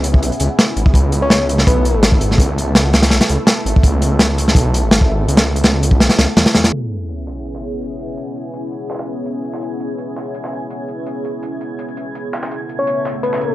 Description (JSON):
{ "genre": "drum and bass, jungle", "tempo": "166 BPM", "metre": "4/4", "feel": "straight", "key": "C# minor", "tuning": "A4 = 440 Hz", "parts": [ { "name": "lush unison pad", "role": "sustained chords", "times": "0.0-13.5 s", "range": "C#3 to A4", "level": "-24 LUFS", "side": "equal", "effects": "chorus, phaser, vintage 12-bit sampler grit" }, { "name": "detuned saw bass", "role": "bass", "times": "0.0-6.7 s", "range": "G#1 to E2", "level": "-16 LUFS", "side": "equal", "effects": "tube saturation" }, { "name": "crunchy breakbeat drum kit", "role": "drums", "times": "0.0-6.7 s", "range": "hi-hat, kick drum, snare drum", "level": "-13 LUFS", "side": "equal", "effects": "none" }, { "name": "soft struck synth lead", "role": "melody", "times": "1.2-2.0, 12.8-13.5 s", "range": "B4 to C#5", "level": "-19 LUFS", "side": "left 2 dB", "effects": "chorus, dub echo" }, { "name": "breakbeat sampler-style drum kit", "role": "drums", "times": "6.7-13.5 s", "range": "hi-hat, snare drum", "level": "-31 LUFS", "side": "right 1 dB", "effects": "overdrive, high-pass filter on hats, high-pass filter on snare, high-pass filter on room" }, { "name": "sub drop", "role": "sound effects", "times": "6.7-8.2 s", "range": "none", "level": "-26 LUFS", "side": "equal", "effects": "none" }, { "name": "twinkling granular texture", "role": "texture", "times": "9.7-13.5 s", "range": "G#6", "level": "-37 LUFS", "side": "right 3 dB", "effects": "built-in reverb" } ], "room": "little or no reverb", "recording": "dry, gritty hardware recording, low-pass filter", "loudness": "-13 LUFS", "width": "side -16 dB against mid", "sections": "0.0-6.7 A section; 6.7-13.5 B section", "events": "impact 6.7-8.2", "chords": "0.0 C#m7; 0.9 Asus2; 6.7 C#m7; 12.5 Asus2/C#", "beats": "0.22 0.58 | 0.94 1.31 1.67 2.03 | 2.39 2.75 3.11 3.48 | 3.84 4.20 4.56 4.92 | 5.28 5.64 6.01 6.37 | 6.73 7.09 7.45 7.81 | 8.17 8.54 8.90 9.26 | 9.62 9.98 10.34 10.70 | 11.07 11.43 11.79 12.15 | 12.51 12.87 13.23" }